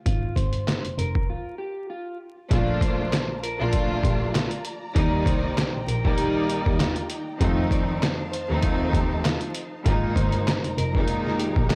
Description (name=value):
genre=hip hop, boom-bap hip-hop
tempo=98 BPM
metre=4/4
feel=swing 57% on 16ths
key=Bb major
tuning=A4 = 440 Hz
part: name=electric guitar at the edge of break-up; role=melody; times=0.1-11.8 s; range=Eb4 to D5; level=-35 LUFS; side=equal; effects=spring reverb, high-pass filter, low-pass filter, analog delay
part: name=warm double bass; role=bass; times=0.1-11.7 s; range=F1 to F2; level=-30 LUFS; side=equal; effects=none
part: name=trip hop sampler-style drum kit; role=drums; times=0.1-11.8 s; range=handclaps, hi-hat, kick drum, snare drum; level=-27 LUFS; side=equal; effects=overdrive
part: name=warm studio string section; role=accompaniment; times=2.5-11.8 s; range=Bb2 to D5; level=-29 LUFS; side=equal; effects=cassette tape, high-pass filter, low-pass filter
part: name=warm studio string section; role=sustained chords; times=2.5-11.8 s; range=Eb4 to Bb5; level=-40 LUFS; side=equal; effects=none
room=small room ambience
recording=dry, gritty hardware recording, vinyl crackle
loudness=-24 LUFS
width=mono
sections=0.0-2.5 A section; 2.5-11.8 B section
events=break 0.0-2.5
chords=0.1 Fmadd9; 2.5 Bbmaj7; 5.0 Ebmaj7; 7.4 F7; 9.9 Absus2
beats=| 0.06 0.67 1.28 1.90 | 2.51 3.12 3.73 4.34 | 4.96 5.57 6.18 6.79 | 7.41 8.02 8.63 9.24 | 9.86 10.47 11.08 11.69